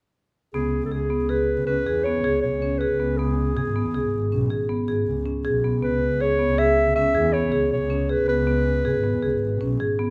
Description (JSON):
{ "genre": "contemporary instrumental, chamber music in an uneven meter", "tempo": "159 BPM", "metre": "7/4", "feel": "straight", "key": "C# minor", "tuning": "A4 = 440 Hz", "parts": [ { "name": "dark clarinet", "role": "melody", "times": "0.5-9.8 s", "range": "G#4 to E5", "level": "-27 LUFS", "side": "equal", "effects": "none" }, { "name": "marimba with medium hard mallets", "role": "arpeggios", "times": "0.5-10.1 s", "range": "B3 to G#4", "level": "-26 LUFS", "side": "equal", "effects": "none" }, { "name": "dark double bass", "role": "bass", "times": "0.5-10.0 s", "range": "G#1 to C#3", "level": "-28 LUFS", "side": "equal", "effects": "none" } ], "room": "moderate recital hall reverb, RT60 1.3 s", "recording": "none", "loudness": "-23 LUFS", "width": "mono", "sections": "0.5-10.1 A section", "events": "none", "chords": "0.5 C#7(no3)", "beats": "| 0.54 0.92 1.30 1.68 2.05 2.43 2.81 | 3.19 3.56 3.94 4.32 4.70 5.08 5.46 | 5.83 6.21 6.59 6.97 7.34 7.72 8.10 | 8.48 8.86 9.23 9.61 9.99" }